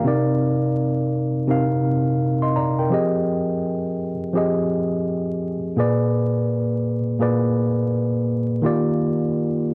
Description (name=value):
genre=R&B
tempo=84 BPM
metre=4/4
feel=swing 61% on 16ths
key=C minor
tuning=A4 = 441 Hz
part: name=tine electric piano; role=solo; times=0.0-9.7 s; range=Bb2 to C6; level=-21 LUFS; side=equal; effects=overdrive, cassette tape
room=moderate studio reverb, RT60 0.5 s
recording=home recording on cassette, vinyl crackle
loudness=-22 LUFS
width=mono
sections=0.0-9.7 A section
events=none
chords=0.1 Cm9; 2.9 Fm9; 5.8 Bb7b9; 8.6 Ebmaj9